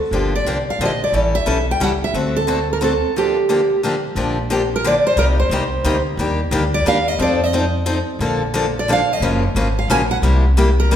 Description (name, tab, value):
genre	acoustic string swing (jazz manouche)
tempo	178 BPM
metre	3/4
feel	swing 60% on 8ths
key	G minor, Bb major from 4.2 s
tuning	A4 = 440 Hz
part	picked steel-string acoustic guitar	accompaniment	0.1-11.0 s	C3 to A4	-20 LUFS	left 2 dB	none
part	upright bass	bass	0.1-11.0 s	Gb1 to F2	-20 LUFS	equal	none
part	picked steel-string acoustic guitar	melody	0.4-11.0 s	G4 to Ab5	-19 LUFS	right 2 dB	none
room	wet recital hall reverb, RT60 1.7 s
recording	recorded in a church or concert hall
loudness	-15 LUFS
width	side -9 dB against mid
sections	0.0-4.2 A section; 4.2-11.0 B section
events	none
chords	0.1 Gm7; 1.1 A7; 2.1 D7; 3.1 Gm7; 4.2 Bb6; 5.2 Cm7; 6.2 Ebmaj7; 7.2 F7; 8.2 Bbmaj7; 9.2 Gbmaj7; 10.2 C7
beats	| 0.11 0.45 0.79 | 1.12 1.46 1.80 | 2.14 2.48 2.81 | 3.15 3.49 3.82 | 4.16 4.50 4.83 | 5.17 5.51 5.85 | 6.18 6.52 6.86 | 7.20 7.53 7.87 | 8.21 8.54 8.88 | 9.22 9.56 9.90 | 10.23 10.57 10.91